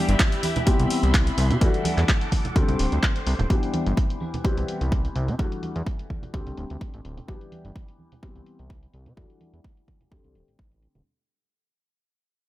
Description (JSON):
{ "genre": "filtered disco house", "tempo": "127 BPM", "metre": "4/4", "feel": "swing 54% on 16ths", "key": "G major", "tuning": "A4 = 440 Hz", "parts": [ { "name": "dark baby grand piano", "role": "accompaniment", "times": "0.0-11.0 s", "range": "D3 to G4", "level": "-29 LUFS", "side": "left 3 dB", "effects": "phaser, sidechain pumping, low-pass filter" }, { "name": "phased string machine", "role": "sustained chords", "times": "0.0-3.5 s", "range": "G4 to D6", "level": "-33 LUFS", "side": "equal", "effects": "ensemble chorus, phaser, sidechain pumping, low-pass filter" }, { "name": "fat analog bass", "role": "bass", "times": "0.1-11.0 s", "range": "D1 to C3", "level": "-24 LUFS", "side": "equal", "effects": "sidechain pumping, low-pass filter" }, { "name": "punchy analog drum machine", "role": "drums", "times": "0.1-11.0 s", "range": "handclaps, hi-hat", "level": "-29 LUFS", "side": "left 1 dB", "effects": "overdrive, sidechain pumping on hats, low-pass filter on hats, small room reverb, low-pass filter on snare" }, { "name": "tambourine and congas", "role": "percussion", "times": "0.1-11.0 s", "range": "none", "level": "-31 LUFS", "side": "right 3 dB", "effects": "sidechain pumping on perc, low-pass filter on perc" }, { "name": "electronic kick drum", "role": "drums", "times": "0.2-10.7 s", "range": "none", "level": "-23 LUFS", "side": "equal", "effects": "small room reverb" } ], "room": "little or no reverb", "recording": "none", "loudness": "-21 LUFS", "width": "side -16 dB against mid", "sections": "0.0-11.1 A section", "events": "fade-out 0.0-11.1; filter sweep 0.0-11.1", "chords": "0.0 G6; 0.7 Cmaj7; 1.6 Em11; 2.6 D7sus4; 3.5 G6; 4.4 Cmaj7; 5.4 Em11; 6.3 D7sus4; 7.3 G6; 8.2 Cmaj7; 9.2 Em11; 10.1 D7sus4", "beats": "0.20 0.67 1.14 | 1.61 2.08 2.56 3.03 | 3.50 3.97 4.45 4.92 | 5.39 5.86 6.34 6.81 | 7.28 7.75 8.23 8.70 | 9.17 9.64 10.12 10.59" }